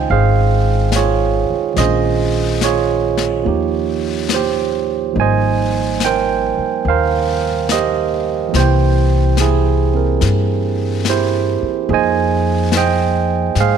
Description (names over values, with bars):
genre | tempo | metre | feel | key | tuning
jazz ballad | 71 BPM | 4/4 | swing 68% on 8ths | unclear | A4 = 440 Hz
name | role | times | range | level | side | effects
barky tine electric piano | accompaniment | 0.0-13.8 s | Eb3 to Ab5 | -16 LUFS | right 10 dB | none
upright bass | bass | 0.0-13.8 s | Ab1 to Ab2 | -18 LUFS | left 3 dB | none
jazz brush drum kit | drums | 0.1-13.8 s | brushed snare drum, hi-hat, snare drum | -25 LUFS | left 9 dB | none
room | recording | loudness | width
light reverb, studio ambience | 1960s-style stereo with parts hard left and right | -14 LUFS | side -7 dB against mid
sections
0.0-13.8 A section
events
none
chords
0.0 Dbmaj9; 1.8 Bbm9; 3.5 Eb7; 5.2 Abmaj9; 8.5 C7b13; 11.9 Fm9